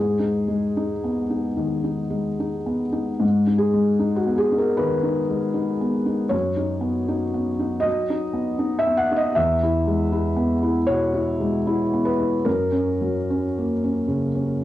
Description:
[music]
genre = neoclassical minimalist piano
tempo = 78 BPM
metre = 4/4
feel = uneven beats, rubato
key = G# minor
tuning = A4 = 439 Hz
[part]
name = felt-muted upright piano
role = solo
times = 0.0-14.6 s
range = E2 to F#5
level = -20 LUFS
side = left 1 dB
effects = cassette tape
[sound]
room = moderate booth ambience, RT60 0.2 s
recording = home recording on cassette, small room ambience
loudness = -20 LUFS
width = side -14 dB against mid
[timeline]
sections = 0.0-3.2 A section; 3.2-14.6 A section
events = none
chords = 0.0 G#m; 6.3 B/F#; 9.4 E; 12.5 F#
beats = 0.78 1.59 2.40 | 3.22 4.01 4.79 5.56 | 6.33 7.10 7.86 8.61 | 9.36 10.12 10.88 11.66 | 12.46 13.28 14.09

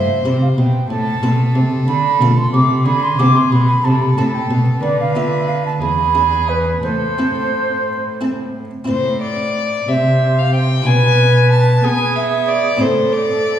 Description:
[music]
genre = classical, baroque-style sonata movement with continuo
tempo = 61 BPM (dotted quarters)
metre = 6/8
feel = rubato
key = A minor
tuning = A4 = 439 Hz
[part]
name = warm violin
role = melody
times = 0.0-13.6 s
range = G#4 to A5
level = -21 LUFS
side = left 2 dB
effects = none
[part]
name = bright baroque flute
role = second line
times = 0.0-13.6 s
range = G#4 to D6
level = -18 LUFS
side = right 3 dB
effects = none
[part]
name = buff-stop harpsichord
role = accompaniment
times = 0.0-13.6 s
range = E2 to C5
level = -23 LUFS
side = equal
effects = none
[part]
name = rich cello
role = bass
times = 0.0-13.6 s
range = E2 to B3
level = -17 LUFS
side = equal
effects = none
[sound]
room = wet recital hall reverb, RT60 1.5 s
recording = heard from further back in the room, small room ambience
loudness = -13 LUFS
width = side -10 dB against mid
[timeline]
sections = 0.0-8.9 A section; 8.9-13.6 B section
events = none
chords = 0.0 C; 1.9 Dm; 2.9 E7; 3.8 Am; 4.8 Bm7b5/D; 5.8 E7; 6.8 Am; 10.9 E7/B; 12.8 Am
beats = | 0.90 1.88 | 2.86 3.84 | 4.82 5.82 | 6.84 7.87 | 8.89 9.89 | 10.87 11.85 | 12.81

